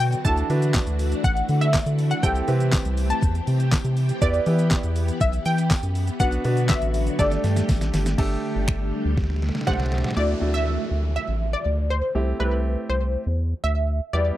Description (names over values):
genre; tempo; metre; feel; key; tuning
dance-pop; 121 BPM; 4/4; straight; A dorian; A4 = 440 Hz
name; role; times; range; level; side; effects
analog pluck; melody; 0.0-14.4 s; B4 to A5; -27 LUFS; equal; chorus, slapback echo
string machine, violins; sustained chords; 0.0-10.1 s; D3 to G4; -31 LUFS; left 1 dB; ensemble chorus, sidechain pumping
round analog bass; bass; 0.0-14.3 s; G1 to E3; -22 LUFS; equal; sidechain pumping
detuned 8-bit digital drum machine; drums; 0.0-10.2 s; crash cymbal, finger snaps, handclaps, hi-hat, kick drum, shaker, snare drum; -24 LUFS; equal; overdrive
clear concert grand piano; accompaniment; 0.2-14.3 s; G3 to C5; -28 LUFS; right 2 dB; sidechain pumping
tambourine; percussion; 0.7-7.8 s; none; -40 LUFS; left 7 dB; none
downlifter; sound effects; 10.2-14.1 s; none; -36 LUFS; right 2 dB; none
room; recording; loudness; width
little or no reverb; dry, close 1970s-style studio recording; -20 LUFS; side -14 dB against mid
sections
0.0-8.2 A section; 8.2-10.2 B section; 10.2-14.4 C section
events
drum fill 7.2-8.2, 9.2-10.2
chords
0.2 Dadd9; 2.2 Am7/C; 4.2 Em; 6.2 Bm; 7.2 Gsus2; 10.2 Dadd9; 12.2 Am7/C